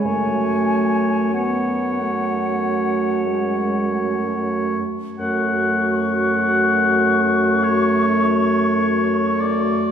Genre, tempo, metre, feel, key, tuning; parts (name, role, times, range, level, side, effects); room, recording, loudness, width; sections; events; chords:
classical, slow romantic movement for wind quintet; 45-51 BPM; 4/4; rubato; F# minor; A4 = 440 Hz
hollow concert flute; melody; 0.0-9.9 s; F#5 to C#6; -28 LUFS; left 5 dB
warm French horn; accompaniment; 0.0-9.9 s; G#3 to B3; -21 LUFS; right 2 dB
dark bassoon; bass; 0.0-9.9 s; F#2; -25 LUFS; equal
clear oboe; second line; 0.1-9.9 s; C#5 to F#5; -22 LUFS; left 2 dB
dark clarinet; accompaniment; 0.1-9.9 s; F#4; -26 LUFS; right 2 dB
wet concert hall reverb, RT60 2.2 s; heard from further back in the room; -17 LUFS; side -8 dB against mid
0.0-5.2 A section; 5.2-9.9 B section
0.1 F#m